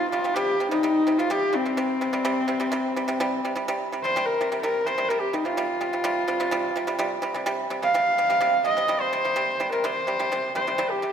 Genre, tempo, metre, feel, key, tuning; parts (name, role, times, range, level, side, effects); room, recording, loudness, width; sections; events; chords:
mongolian traditional; 126 BPM; 4/4; straight; C yu mode; A4 = 442 Hz
clear horsehead fiddle; melody; 0.0-11.1 s; C4 to F5; -23 LUFS; equal
pipa; arpeggios; 0.0-11.1 s; C3 to G3; -27 LUFS; right 2 dB
wet concert hall reverb, RT60 1.9 s; -22 LUFS; side -8 dB against mid
0.0-3.7 A section; 3.7-11.1 B section
0.0 C5